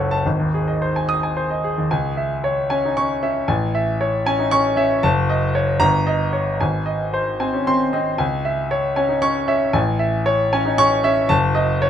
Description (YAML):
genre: classical, virtuoso piano study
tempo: 76 BPM (dotted quarters)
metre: 6/8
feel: rubato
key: C# minor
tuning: A4 = 440 Hz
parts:
  - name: clear grand piano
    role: solo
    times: 0.0-11.9 s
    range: F#1 to D#6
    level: -17 LUFS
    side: equal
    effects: none
room: light reverb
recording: none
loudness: -17 LUFS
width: side -9 dB against mid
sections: 0.0-1.9 A section; 1.9-11.9 B section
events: none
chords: 0.2 G#; 1.9 C#m; 3.5 Amaj7; 5.0 D#m7b5/F#; 5.8 D#7/G; 6.6 G#; 8.2 C#m; 9.8 Amaj7; 11.3 D#m7b5/F#